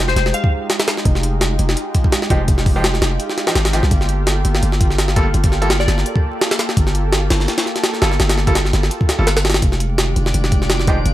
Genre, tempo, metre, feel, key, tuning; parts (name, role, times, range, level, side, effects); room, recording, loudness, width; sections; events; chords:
drum and bass, jungle; 168 BPM; 4/4; swing 55% on 16ths; A4 = 437 Hz
lush unison pad; sustained chords; 0.0-11.1 s; Eb3 to A4; -24 LUFS; equal; chorus
long sustained 808-style bass; bass; 0.0-11.1 s; F1 to C2; -17 LUFS; equal
glassy wavetable pluck; melody; 0.1-0.7, 5.8-6.0 s; C5 to F5; -24 LUFS; left 4 dB; chorus, vintage 12-bit sampler grit, dub echo
jungle sampler-style drum kit; drums; 0.1-11.1 s; hi-hat, kick drum, snare drum; -17 LUFS; equal
bright grand piano; stabs; 2.3-5.7, 8.0-11.0 s; F3 to A4; -25 LUFS; right 1 dB; vintage 12-bit sampler grit, dub echo
drifting glass-harmonics texture; texture; 9.9-11.1 s; D4 to D5; -28 LUFS; left 2 dB; chorus, built-in reverb
digital ambience; vinyl crackle; -14 LUFS; side -14 dB against mid
0.0-11.1 A section
0.0 Fm9; 3.9 Gm9; 9.6 Fm9